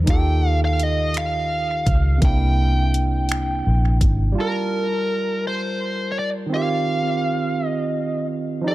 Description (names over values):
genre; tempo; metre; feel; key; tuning
slow six-eight R&B; 56 BPM (dotted quarters); 6/8; straight; unclear; A4 = 436 Hz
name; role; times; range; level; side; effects
barky tine electric piano; accompaniment; 0.0-8.7 s; C3 to A5; -24 LUFS; right 3 dB; overdrive, tape echo
vintage muted fingered electric bass; bass; 0.0-4.3 s; Ab1 to Eb2; -19 LUFS; equal; none
dark smooth lead guitar; melody; 0.1-8.7 s; Bb4 to G5; -25 LUFS; equal; overdrive, tape echo
smooth R&B drum kit; drums; 0.1-4.2 s; finger snaps, hi-hat, kick drum; -20 LUFS; equal; none
room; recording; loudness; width
light reverb; echo-heavy mix; -18 LUFS; side -16 dB against mid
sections
0.0-4.4 A section; 4.4-8.7 B section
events
none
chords
0.1 Ebadd9; 2.2 C9; 4.4 Gm9; 6.5 Eb69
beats
| 0.08 1.15 | 2.22 3.29 | 4.36 5.43 | 6.51 7.58 | 8.65